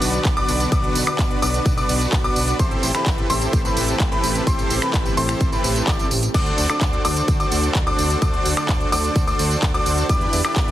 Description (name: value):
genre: EDM, festival progressive house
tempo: 128 BPM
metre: 4/4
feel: straight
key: unclear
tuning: A4 = 444 Hz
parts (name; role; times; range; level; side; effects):
- lush unison pad; sustained chords; 0.0-10.7 s; D3 to G4; -29 LUFS; equal; chorus, phaser, vintage 12-bit sampler grit, sidechain pumping
- clear grand piano; arpeggios; 0.0-10.7 s; B5 to D6; -25 LUFS; left 2 dB; sidechain pumping, digital delay
- dense compressed supersaw; riff; 0.0-10.7 s; B3 to D5; -24 LUFS; right 1 dB; cassette tape, sidechain pumping, digital delay
- fat analog bass; bass; 0.0-10.7 s; A1 to E2; -25 LUFS; equal; sidechain pumping
- big-room dance drum kit; drums; 0.0-10.7 s; crash cymbal, finger snaps, handclaps, hi-hat, tambourine; -25 LUFS; right 1 dB; none
- electronic kick drum; drums; 0.3-10.7 s; none; -21 LUFS; equal; none
room: digital ambience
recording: heavily compressed radio sound, multiband compression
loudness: -17 LUFS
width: side -13 dB against mid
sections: 0.0-10.7 A section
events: none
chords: 0.0 Bm; 2.6 Am7; 6.3 D7; 10.1 Em7